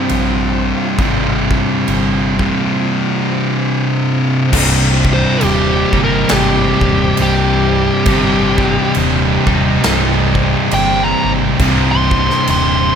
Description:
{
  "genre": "stoner and doom metal",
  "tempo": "68 BPM",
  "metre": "4/4",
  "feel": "swing 59% on 8ths",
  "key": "C minor",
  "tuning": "A4 = 440 Hz",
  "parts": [
    { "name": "swarming drone", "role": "sustained chords", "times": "0.0-13.0 s", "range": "C4 to C5", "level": "-27 LUFS", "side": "right 1 dB", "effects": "built-in reverb" },
    { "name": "thick fuzz guitar", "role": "riff", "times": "0.0-13.0 s", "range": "C2 to C3", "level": "-17 LUFS", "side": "left 8 dB", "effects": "distortion" },
    { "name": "thick fuzz guitar", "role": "riff", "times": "0.0-13.0 s", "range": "C2 to C3", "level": "-18 LUFS", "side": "right 9 dB", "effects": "distortion" },
    { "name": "hollow-body short-scale fingered electric bass", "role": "bass", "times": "0.1-12.9 s", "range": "C1 to Bb1", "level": "-20 LUFS", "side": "equal", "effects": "overdrive" },
    { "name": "big rock drum kit", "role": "drums", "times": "0.1-12.7 s", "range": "crash cymbal, kick drum, snare drum", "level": "-20 LUFS", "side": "equal", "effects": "none" },
    { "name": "high-gain distorted guitar", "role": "riff", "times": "4.5-13.0 s", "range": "C2 to Eb4", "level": "-20 LUFS", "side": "right 1 dB", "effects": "distortion" },
    { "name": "fuzz lead guitar", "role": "melody", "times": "5.1-13.0 s", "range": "G4 to C6", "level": "-18 LUFS", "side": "equal", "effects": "distortion, ping-pong delay" }
  ],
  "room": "small room ambience",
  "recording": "none",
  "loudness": "-11 LUFS",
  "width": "side -7 dB against mid",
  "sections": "0.0-4.5 A section; 4.5-13.0 B section",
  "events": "lead electric guitar solo 4.5-13.0",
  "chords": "0.0 C5; 4.5 Cm",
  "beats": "0.10 | 0.99 1.88 2.76 3.65 | 4.53 5.42 6.30 7.18 | 8.07 8.95 9.83 10.71 | 11.60 12.48"
}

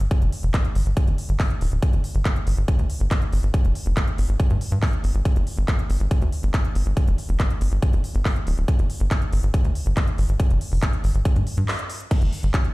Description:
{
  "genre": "psychedelic trance",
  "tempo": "140 BPM",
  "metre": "4/4",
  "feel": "straight",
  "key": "unclear",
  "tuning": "A4 = 440 Hz",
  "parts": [
    { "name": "tight sequencer bass", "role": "bass", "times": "0.0-12.5 s", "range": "D1 to G2", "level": "-20 LUFS", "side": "equal", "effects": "none" },
    { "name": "techno drum kit", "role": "drums", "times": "0.0-12.7 s", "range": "crash cymbal, handclaps, hi-hat", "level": "-32 LUFS", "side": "equal", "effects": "none" },
    { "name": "electronic kick drum", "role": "drums", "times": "0.1-12.6 s", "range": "none", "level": "-21 LUFS", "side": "equal", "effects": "none" }
  ],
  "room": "little or no reverb",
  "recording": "played on a big sound system in a bare room, large studio reverb",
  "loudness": "-19 LUFS",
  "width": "side -21 dB against mid",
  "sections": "0.0-12.1 A section",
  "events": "break 11.7-12.1; band accent 11.7",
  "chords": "none",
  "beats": "| 0.11 0.54 0.97 1.40 | 1.82 2.25 2.68 3.11 | 3.54 3.97 4.40 4.83 | 5.25 5.68 6.11 6.54 | 6.97 7.40 7.83 8.25 | 8.68 9.11 9.54 9.97 | 10.40 10.82 11.25 11.68 | 12.11 12.54"
}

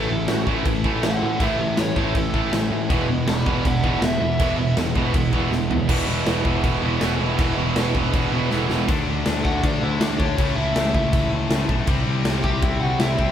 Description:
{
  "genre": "punk rock",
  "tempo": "160 BPM",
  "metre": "4/4",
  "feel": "straight",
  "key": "unclear",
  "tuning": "A4 = 440 Hz",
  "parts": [
    { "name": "overdriven electric guitar", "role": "melody", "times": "0.0-4.8, 9.5-13.3 s", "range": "C#4 to B5", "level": "-27 LUFS", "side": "equal", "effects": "none" },
    { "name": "distorted electric guitar", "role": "riff", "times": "0.0-13.3 s", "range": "A2 to E4", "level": "-28 LUFS", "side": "equal", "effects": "overdrive" },
    { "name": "overdriven electric guitar", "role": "riff", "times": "0.0-8.9 s", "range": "E2 to A3", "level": "-25 LUFS", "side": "right 6 dB", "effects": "none" },
    { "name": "tight distorted guitar", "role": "riff", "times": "0.0-13.3 s", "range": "E2 to D4", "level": "-28 LUFS", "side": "left 9 dB", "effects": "distortion" },
    { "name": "fuzz picked electric bass", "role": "bass", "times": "0.0-13.3 s", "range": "E1 to A2", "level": "-25 LUFS", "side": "equal", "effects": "overdrive" },
    { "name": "big rock drum kit", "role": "drums", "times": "0.3-13.3 s", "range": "crash cymbal, kick drum, snare drum, toms", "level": "-23 LUFS", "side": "equal", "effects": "none" }
  ],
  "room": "light reverb",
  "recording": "band playing live in one room",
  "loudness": "-19 LUFS",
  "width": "side -9 dB against mid",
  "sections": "0.0-5.9 A section; 5.9-8.9 B section; 8.9-13.3 C section",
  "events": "overdriven electric guitar solo 0.0-5.9; drum fill 5.5-5.9, 8.5-8.9",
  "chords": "0.0 A; 2.9 E; 8.9 D; 10.4 A/C#; 11.9 C",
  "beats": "0.28 0.66 1.03 | 1.40 1.78 2.15 2.52 | 2.90 3.27 3.65 4.02 | 4.39 4.77 5.14 5.52 | 5.89 6.26 6.64 7.01 | 7.39 7.76 8.14 8.51 | 8.89 9.26 9.63 10.01 | 10.38 10.76 11.13 11.50 | 11.88 12.25 12.62 13.00"
}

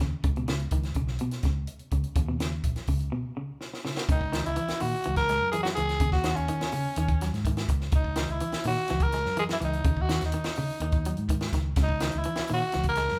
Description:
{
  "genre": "afrobeat",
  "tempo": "125 BPM",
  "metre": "4/4",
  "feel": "straight",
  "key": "C# dorian",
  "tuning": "A4 = 443 Hz",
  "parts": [
    { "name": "semi-hollow electric guitar", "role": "arpeggios", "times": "0.0-13.1 s", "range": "B2 to G#3", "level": "-36 LUFS", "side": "equal", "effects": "none" },
    { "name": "fingered electric bass", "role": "bass", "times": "0.0-13.2 s", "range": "A#1 to C#3", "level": "-34 LUFS", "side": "equal", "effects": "none" },
    { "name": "compact cocktail drum kit", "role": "drums", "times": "0.0-13.1 s", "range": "hi-hat, kick drum, snare drum", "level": "-32 LUFS", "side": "equal", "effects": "none" },
    { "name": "growling tenor saxophone", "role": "melody", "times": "4.1-13.2 s", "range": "C#4 to A#4", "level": "-32 LUFS", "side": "equal", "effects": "none" }
  ],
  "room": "moderate large studio reverb, RT60 1.2 s",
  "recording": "band playing live in one room",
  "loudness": "-28 LUFS",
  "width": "mono",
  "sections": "0.0-4.1 A section; 4.1-13.2 B section",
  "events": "break 3.1-4.1; drum fill 3.6-4.1",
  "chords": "0.2 N.C.; 2.2 D#5; 4.1 C#madd9; 6.0 D#7(no3); 7.9 C#madd9; 9.8 D#7(no3); 11.8 C#madd9",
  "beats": "| 0.24 0.72 1.20 1.69 | 2.17 2.65 3.13 3.61 | 4.09 4.57 5.05 5.53 | 6.01 6.49 6.97 7.45 | 7.93 8.41 8.89 9.37 | 9.85 10.33 10.81 11.29 | 11.77 12.25 12.73"
}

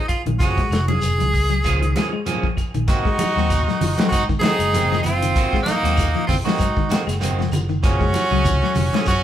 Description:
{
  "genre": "afrobeat",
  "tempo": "97 BPM",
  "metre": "4/4",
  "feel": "swing 55% on 16ths",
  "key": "Ab mixolydian",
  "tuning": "A4 = 440 Hz",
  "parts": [
    { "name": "edgy tenor saxophone", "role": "melody", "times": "0.0-9.2 s", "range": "Eb4 to Ab4", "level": "-23 LUFS", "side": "equal", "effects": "none" },
    { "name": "electric guitar at the edge of break-up", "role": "stabs", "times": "0.1-9.1 s", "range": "Eb3 to Ab4", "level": "-28 LUFS", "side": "right 4 dB", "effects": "spring reverb" },
    { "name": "warm soul drum kit", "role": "drums", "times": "0.1-9.2 s", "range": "hi-hat, kick drum, snare drum", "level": "-23 LUFS", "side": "equal", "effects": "none" },
    { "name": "claves", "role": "percussion", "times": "0.1-9.2 s", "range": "none", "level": "-38 LUFS", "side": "left 2 dB", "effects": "none" },
    { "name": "shekere", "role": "percussion", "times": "0.1-9.2 s", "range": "none", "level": "-32 LUFS", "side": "left 1 dB", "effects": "none" },
    { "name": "semi-hollow electric guitar", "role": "arpeggios", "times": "0.3-9.2 s", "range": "Eb3 to Ab3", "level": "-27 LUFS", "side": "left 7 dB", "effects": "tremolo" },
    { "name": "fingered electric bass", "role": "bass", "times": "0.3-9.2 s", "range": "F1 to Ab2", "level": "-22 LUFS", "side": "equal", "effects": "none" },
    { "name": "congas", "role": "percussion", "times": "0.3-9.2 s", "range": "none", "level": "-27 LUFS", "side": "right 1 dB", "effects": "none" },
    { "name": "brilliant trumpet", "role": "second line", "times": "2.9-9.2 s", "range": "Bb3 to Eb4", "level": "-24 LUFS", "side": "right 3 dB", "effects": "none" }
  ],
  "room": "moderate studio reverb, RT60 0.5 s",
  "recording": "band playing live in one room",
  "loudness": "-17 LUFS",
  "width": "side -11 dB against mid",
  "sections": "0.0-2.9 A section; 2.9-9.2 B section",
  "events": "none",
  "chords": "0.0 Gbmaj9; 2.9 Ab9; 7.8 Gbmaj9",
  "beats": "| 0.40 1.02 1.65 2.26 | 2.88 3.50 4.12 4.74 | 5.36 5.98 6.60 7.21 | 7.83 8.45 9.07"
}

